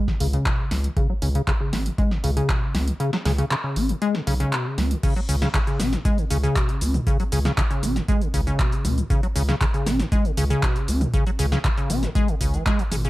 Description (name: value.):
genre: acid house.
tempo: 118 BPM.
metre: 4/4.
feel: straight.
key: unclear.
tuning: A4 = 440 Hz.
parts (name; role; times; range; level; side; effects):
deep acid bass; riff; 0.0-13.1 s; B2 to C#4; -24 LUFS; equal; analog chorus, vintage 12-bit sampler grit.
electronic kick drum; drums; 0.1-12.8 s; none; -23 LUFS; equal; overdrive, studio reverb.
punchy analog drum machine; drums; 0.1-13.1 s; crash cymbal, handclaps, hi-hat, shaker, snare drum, toms; -28 LUFS; equal; overdrive, studio reverb.
saturated sub bass; bass; 0.2-13.1 s; G#1 to C#2; -24 LUFS; equal; sidechain pumping.
room: light reverb.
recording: dark, warm production.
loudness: -20 LUFS.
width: side -17 dB against mid.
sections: 0.0-5.0 A section; 5.0-13.1 B section.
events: filter sweep on acid bass 0.0-5.0; kick drops out 3.0-5.0; drop 5.0-13.1.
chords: 0.0 C#7(no3); 5.0 C#5.